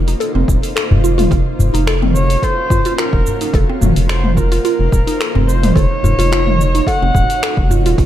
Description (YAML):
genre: organic downtempo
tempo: 108 BPM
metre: 4/4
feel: swing 53% on 16ths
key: unclear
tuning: A4 = 435 Hz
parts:
  - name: granular cloud pad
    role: sustained chords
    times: 0.0-8.1 s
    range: Bb3 to Db5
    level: -23 LUFS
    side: equal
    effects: built-in reverb, sidechain pumping
  - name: round analog bass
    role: bass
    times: 0.0-8.1 s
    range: Eb1 to F1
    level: -15 LUFS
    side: equal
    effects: none
  - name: mallet-like synth pluck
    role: arpeggios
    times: 0.1-8.1 s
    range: C4 to A4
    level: -21 LUFS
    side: equal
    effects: chorus, phaser, ping-pong delay
  - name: deep house drum kit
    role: drums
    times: 0.1-8.1 s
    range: cabasa, finger snaps, hi-hat, toms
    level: -20 LUFS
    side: equal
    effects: none
  - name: electronic kick drum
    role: drums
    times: 0.5-8.1 s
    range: none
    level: -16 LUFS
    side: equal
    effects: none
  - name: udu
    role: percussion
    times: 0.9-7.8 s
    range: none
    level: -18 LUFS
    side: left 1 dB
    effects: none
  - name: dark kamancheh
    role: melody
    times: 2.1-7.7 s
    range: Bb4 to Gb5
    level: -20 LUFS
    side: right 1 dB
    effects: ping-pong delay
room: light reverb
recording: dark, warm production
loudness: -12 LUFS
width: side -12 dB against mid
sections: 0.0-8.1 A section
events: none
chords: 0.0 F7sus4; 1.3 Gbmaj7/F; 3.5 F7sus4; 5.8 Ebm7/F